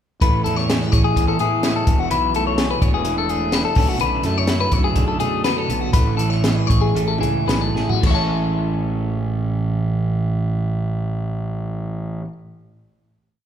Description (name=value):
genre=math rock and midwest emo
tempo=107-127 BPM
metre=4/4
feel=straight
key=A major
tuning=A4 = 441 Hz
part: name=twelve-string electric guitar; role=accompaniment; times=0.2-12.4 s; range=E2 to G#4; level=-23 LUFS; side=right 4 dB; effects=none
part: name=clean electric guitar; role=arpeggios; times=0.2-12.3 s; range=F#4 to A5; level=-22 LUFS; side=left 7 dB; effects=phaser
part: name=fuzz fingered electric bass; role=bass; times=0.2-12.2 s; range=E1 to B2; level=-24 LUFS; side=equal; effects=overdrive
part: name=compact cocktail drum kit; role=drums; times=0.2-8.2 s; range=crash cymbal, hi-hat, kick drum, snare drum, toms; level=-20 LUFS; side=equal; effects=none
room=moderate recital hall reverb, RT60 1.6 s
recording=recorded in a church or concert hall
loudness=-17 LUFS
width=side -9 dB against mid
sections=0.2-8.0 A section; 8.0-12.5 final chord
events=slowing down 4.0-8.0; drum fill 7.8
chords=0.2 Amaj7; 1.9 Esus4; 3.8 Bm11; 5.9 Amaj7